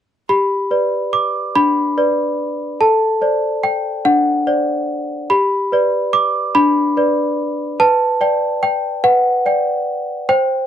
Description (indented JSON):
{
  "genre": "classical, lullaby for celesta",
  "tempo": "48 BPM (dotted quarters)",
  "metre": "6/8",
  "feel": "straight",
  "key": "G major",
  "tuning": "A4 = 441 Hz",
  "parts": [
    { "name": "worn celesta", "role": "solo", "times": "0.3-10.7 s", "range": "D4 to D6", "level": "-14 LUFS", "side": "equal", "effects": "none" }
  ],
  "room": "light reverb",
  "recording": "dry, close 1970s-style studio recording",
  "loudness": "-14 LUFS",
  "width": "side -9 dB against mid",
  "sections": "0.3-10.7 A section",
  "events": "none",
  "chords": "0.3 G; 2.8 D7/A; 5.3 G; 7.8 G/B"
}